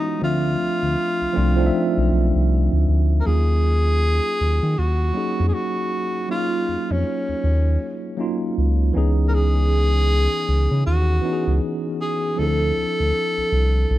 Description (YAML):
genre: R&B, neo-soul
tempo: 79 BPM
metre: 4/4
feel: swing 60% on 16ths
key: unclear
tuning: A4 = 439 Hz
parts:
  - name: breathy tenor saxophone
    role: melody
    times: 0.0-14.0 s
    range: Db4 to Bb4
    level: -24 LUFS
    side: equal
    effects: none
  - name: mellow tine electric piano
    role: accompaniment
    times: 0.0-14.0 s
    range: Fb3 to E5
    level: -24 LUFS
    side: right 1 dB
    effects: medium stereo tremolo
  - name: smooth synth bass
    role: bass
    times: 0.2-14.0 s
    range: Cb2 to Eb3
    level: -18 LUFS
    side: equal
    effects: none
room: light reverb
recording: dark, warm production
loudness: -18 LUFS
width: side -15 dB against mid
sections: 0.0-3.2 A section; 3.2-14.0 B section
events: none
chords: 0.2 Dm9; 3.2 Ebm9; 8.9 Dbm9; 12.4 Dm9